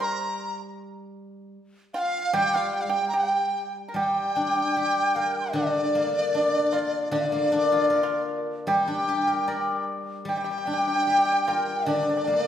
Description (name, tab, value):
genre	chinese traditional, Chinese chamber ensemble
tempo	76 BPM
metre	2/4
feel	rubato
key	G yu mode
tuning	A4 = 444 Hz
part	mellow hollow dizi	melody	0.0-12.5 s	D5 to Bb5	-28 LUFS	right 2 dB	none
part	mellow hollow dizi	second line	0.0-12.5 s	D5 to G6	-27 LUFS	left 2 dB	none
part	pipa	second line	0.0-12.5 s	D4 to Bb4	-30 LUFS	right 3 dB	none
part	steel-string zither	accompaniment	0.0-12.5 s	D3 to D5	-29 LUFS	left 2 dB	none
room	wet recital hall reverb, RT60 1.4 s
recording	heard from further back in the room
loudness	-22 LUFS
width	side -10 dB against mid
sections	0.0-4.0 A section; 4.0-12.5 B section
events	none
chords	none